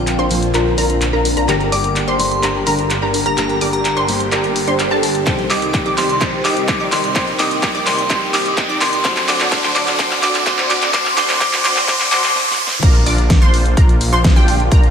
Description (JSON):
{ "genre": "EDM, festival progressive house", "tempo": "127 BPM", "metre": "4/4", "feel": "straight", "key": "Bb major", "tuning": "A4 = 440 Hz", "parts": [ { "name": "glassy synth bell", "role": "melody", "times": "0.0-12.3 s", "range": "Bb5 to D6", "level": "-22 LUFS", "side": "equal", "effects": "chorus, analog delay" }, { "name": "picked steel-string acoustic guitar", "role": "accompaniment", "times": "0.0-12.3 s", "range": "D3 to A4", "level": "-25 LUFS", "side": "equal", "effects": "sidechain pumping, analog delay" }, { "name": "lush unison pad", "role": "sustained chords", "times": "0.0-14.9 s", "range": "D3 to G4", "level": "-26 LUFS", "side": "equal", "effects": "chorus, sidechain pumping" }, { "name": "wide unison pluck", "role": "arpeggios", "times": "0.0-14.9 s", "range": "G5 to Eb6", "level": "-23 LUFS", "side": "equal", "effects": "ensemble chorus, sidechain pumping, analog delay" }, { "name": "supersaw stab", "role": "riff", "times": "0.0-14.9 s", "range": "D4 to Eb5", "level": "-22 LUFS", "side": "equal", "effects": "phaser, sidechain pumping, low-pass filter, analog delay" }, { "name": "detuned saw bass", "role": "bass", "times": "0.0-14.9 s", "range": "G1 to D2", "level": "-22 LUFS", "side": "equal", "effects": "sidechain pumping" }, { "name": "riser", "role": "sound effects", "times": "2.3-12.8 s", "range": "none", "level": "-24 LUFS", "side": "equal", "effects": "none" }, { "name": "big-room dance drum kit", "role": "drums", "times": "0.1-14.9 s", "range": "crash cymbal, handclaps, hi-hat, snare drum", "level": "-19 LUFS", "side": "equal", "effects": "none" }, { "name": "electronic kick drum", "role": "drums", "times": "5.3-14.8 s", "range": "none", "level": "-14 LUFS", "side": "equal", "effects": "none" } ], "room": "wet lush hall reverb, RT60 1.8 s", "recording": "dreamy mix soaked in reverb, high-pass filter", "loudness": "-13 LUFS", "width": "side -7 dB against mid", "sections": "0.0-12.8 A section; 12.8-14.9 B section", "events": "build-up 0.0-12.8; drum fill 0.0-12.4, 12.4-12.8; filter sweep on supersaw synth 0.0-12.8; filter sweep on synth pluck 0.0-12.8; filter sweep 0.0-12.8; riser 2.3-12.8; stop 12.4-12.8; drop 12.8-14.9", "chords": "0.0 Bb; 1.5 Gm; 5.3 Cm; 9.0 D; 12.8 Bb", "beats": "0.07 0.54 1.01 | 1.49 1.96 2.43 2.90 | 3.38 3.85 4.32 4.79 | 5.27 5.74 6.21 6.68 | 7.16 7.63 8.10 8.57 | 9.05 9.52 9.99 10.46 | 10.94 11.41 11.88 12.35 | 12.83 13.30 13.77 14.24 | 14.72" }